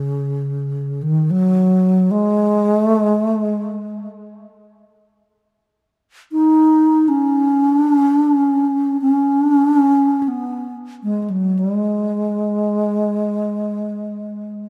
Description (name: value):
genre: world meditative, free-time meditation music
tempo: free time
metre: none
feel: none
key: G# minor pentatonic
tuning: A4 = 441 Hz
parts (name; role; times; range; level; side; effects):
- mellow hollow bass flute; solo; 0.0-14.7 s; C#3 to D#4; -18 LUFS; equal; diffuse ambient delay
room: wet studio reverb, RT60 0.6 s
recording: none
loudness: -17 LUFS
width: mono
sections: 0.0-14.7 A section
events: none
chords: none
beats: free time